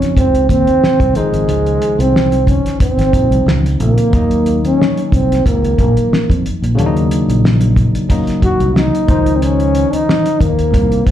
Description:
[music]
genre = lush 1970s-style soul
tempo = 91 BPM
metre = 4/4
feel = swing 54% on 16ths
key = Db major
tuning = A4 = 440 Hz
[part]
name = breathy trombone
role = melody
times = 0.0-11.1 s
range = Ab3 to Gb4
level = -15 LUFS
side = right 1 dB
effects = slapback echo
[part]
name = barky tine electric piano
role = accompaniment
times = 0.0-11.1 s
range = Db3 to C5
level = -18 LUFS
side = left 3 dB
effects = slapback echo
[part]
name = fingered electric bass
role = bass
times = 0.0-11.1 s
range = Ab1 to F2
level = -15 LUFS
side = right 1 dB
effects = none
[part]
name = cloth-damped thuddy drum kit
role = drums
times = 0.0-11.1 s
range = hi-hat, kick drum, snare drum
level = -16 LUFS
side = equal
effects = none
[sound]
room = light reverb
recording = live gig heard through the venue's PA, club reverb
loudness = -11 LUFS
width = side -11 dB against mid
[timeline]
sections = 0.0-11.1 A section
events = none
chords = 0.0 Dbmaj9; 4.1 Ebm7; 9.1 Dbmaj9

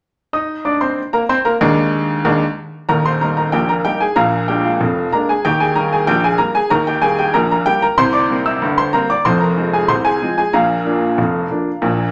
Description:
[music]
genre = ragtime piano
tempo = 94 BPM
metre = 2/4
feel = straight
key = Eb major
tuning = A4 = 440 Hz
[part]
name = clear upright piano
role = solo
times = 0.3-12.1 s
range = Eb1 to E6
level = -16 LUFS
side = equal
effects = none
[sound]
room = moderate large studio reverb, RT60 0.9 s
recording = none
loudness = -16 LUFS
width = mono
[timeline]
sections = 0.3-2.9 A section; 2.9-12.1 B section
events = none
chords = 0.3 Eb5; 1.6 Bb7/Eb; 2.9 Eb; 4.2 Bb7; 5.4 Eb; 8.0 C7; 9.2 Fm; 10.5 Bb

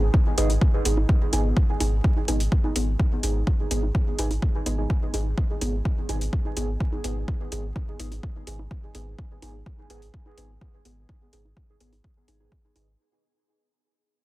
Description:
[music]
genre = dub techno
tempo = 126 BPM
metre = 4/4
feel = straight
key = G# minor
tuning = A4 = 440 Hz
[part]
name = deep mellow chord stab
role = stabs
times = 0.0-12.9 s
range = B3 to G#4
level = -31 LUFS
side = right 1 dB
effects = chorus, phaser, sidechain pumping, dub echo
[part]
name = pure sine sub bass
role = bass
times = 0.0-12.9 s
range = G#1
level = -26 LUFS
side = equal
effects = sidechain pumping
[part]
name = electronic kick drum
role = drums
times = 0.1-12.6 s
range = none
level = -23 LUFS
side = equal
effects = overdrive
[part]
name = bongos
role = percussion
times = 0.1-12.9 s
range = none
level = -37 LUFS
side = right 3 dB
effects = none
[part]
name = electronic hi-hat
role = drums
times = 0.4-12.9 s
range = none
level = -31 LUFS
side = equal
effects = overdrive
[sound]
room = digital ambience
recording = dense, heavily limited modern master, vinyl crackle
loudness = -22 LUFS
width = side -18 dB against mid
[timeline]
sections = 0.0-13.0 A section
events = fade-out 0.0-13.0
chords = 0.0 G#m

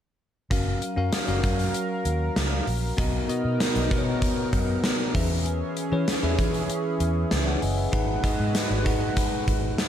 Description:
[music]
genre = 1980s-style pop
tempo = 97 BPM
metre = 4/4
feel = straight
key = F# major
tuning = A4 = 442 Hz
[part]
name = bell-like tine electric piano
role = accompaniment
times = 0.5-9.9 s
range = G#2 to G#5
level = -28 LUFS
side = left 3 dB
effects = slapback echo
[part]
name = chorused pulse-width pad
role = sustained chords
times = 0.5-9.9 s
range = E3 to E#5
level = -31 LUFS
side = right 2 dB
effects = none
[part]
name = vintage muted fingered electric bass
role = bass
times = 0.5-9.7 s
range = F#1 to E3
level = -27 LUFS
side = equal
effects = none
[part]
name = gated 80s drum kit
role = drums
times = 0.5-9.9 s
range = hi-hat, kick drum, snare drum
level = -26 LUFS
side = equal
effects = none
[sound]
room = moderate lush hall reverb, RT60 2.6 s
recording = big arena sound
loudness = -22 LUFS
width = side -10 dB against mid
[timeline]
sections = 0.5-9.9 A section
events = none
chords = 0.5 F#maj7; 3.0 Bmaj7; 5.1 E6; 7.9 G#m7

